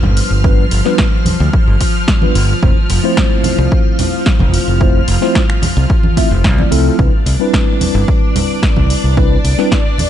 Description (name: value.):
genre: nu-disco, nu disco.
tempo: 110 BPM.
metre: 4/4.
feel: straight.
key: unclear.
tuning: A4 = 441 Hz.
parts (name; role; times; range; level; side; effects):
mellow tine electric piano; accompaniment; 0.0-9.8 s; G3 to E5; -18 LUFS; left 1 dB; medium stereo tremolo, sidechain pumping, ping-pong delay.
string machine, full ensemble; sustained chords; 0.0-10.1 s; F3 to F6; -20 LUFS; equal; ensemble chorus, sidechain pumping.
modern bright fingered electric bass; bass; 0.0-9.5 s; F1 to D2; -14 LUFS; equal; tube saturation, sidechain pumping.
congas; percussion; 0.0-10.1 s; none; -20 LUFS; right 2 dB; none.
house drum kit; drums; 0.2-10.1 s; finger snaps, hi-hat, snare drum; -21 LUFS; equal; none.
electronic kick drum; drums; 0.4-9.8 s; none; -14 LUFS; equal; none.
room: digital ambience.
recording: dark, warm production, nothing above 10.8 kHz.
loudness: -10 LUFS.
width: side -10 dB against mid.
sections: 0.0-10.1 A section.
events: none.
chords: 0.0 G7; 2.6 Fmaj7; 7.0 Cmaj9.